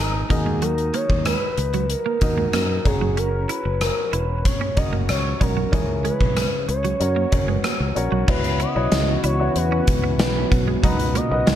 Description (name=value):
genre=1980s-style pop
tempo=94 BPM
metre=4/4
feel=straight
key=unclear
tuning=A4 = 440 Hz
part: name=expressive portamento lead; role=melody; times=0.0-11.6 s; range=G#4 to D#5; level=-25 LUFS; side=equal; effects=chorus, digital delay
part: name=warm baby grand piano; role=accompaniment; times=0.0-11.6 s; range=G#2 to A#5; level=-28 LUFS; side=left 2 dB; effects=none
part: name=fretless electric bass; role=bass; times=0.0-11.6 s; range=E1 to F#2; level=-24 LUFS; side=equal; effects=none
part: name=twelve-string electric guitar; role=riff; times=0.3-11.6 s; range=E3 to E4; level=-29 LUFS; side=right 7 dB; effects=analog chorus
part: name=gated 80s drum kit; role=drums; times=0.3-11.6 s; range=crash cymbal, hi-hat, kick drum, rim click, snare drum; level=-22 LUFS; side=equal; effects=none
part: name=chorused pulse-width pad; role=sustained chords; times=8.3-11.6 s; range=A#2 to F#4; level=-27 LUFS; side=right 1 dB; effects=none
room=light reverb, small room ambience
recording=dark, warm production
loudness=-18 LUFS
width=side -11 dB against mid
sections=0.0-8.3 A section; 8.3-11.6 B section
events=none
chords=0.3 D#m; 2.9 F#; 5.7 C#m; 7.0 F#; 8.3 F#7sus4; 10.8 Bmaj7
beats=| 0.62 1.26 1.90 2.54 | 3.18 3.81 4.45 5.09 | 5.73 6.37 7.01 7.64 | 8.28 8.92 9.56 10.20 | 10.84 11.47